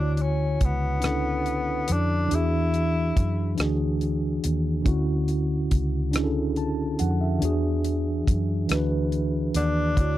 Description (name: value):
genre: slow six-eight R&B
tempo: 47 BPM (dotted quarters)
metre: 6/8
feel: straight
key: unclear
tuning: A4 = 440 Hz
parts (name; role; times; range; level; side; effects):
- warm tenor saxophone; melody; 0.0-3.6, 9.6-10.2 s; B3 to E4; -28 LUFS; left 3 dB; none
- mellow tine electric piano; accompaniment; 0.0-10.2 s; D3 to A5; -27 LUFS; right 1 dB; medium stereo tremolo
- vintage muted fingered electric bass; bass; 0.0-10.2 s; C#2 to F#2; -26 LUFS; equal; none
- damped 70s drum kit; drums; 0.2-10.2 s; hi-hat, kick drum, rim click; -25 LUFS; equal; none
room: little or no reverb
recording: dry, close 1970s-style studio recording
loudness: -22 LUFS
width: side -14 dB against mid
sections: 0.0-10.2 A section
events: none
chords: 0.0 Dmaj9; 2.3 E9; 4.9 Dmaj9; 7.4 E9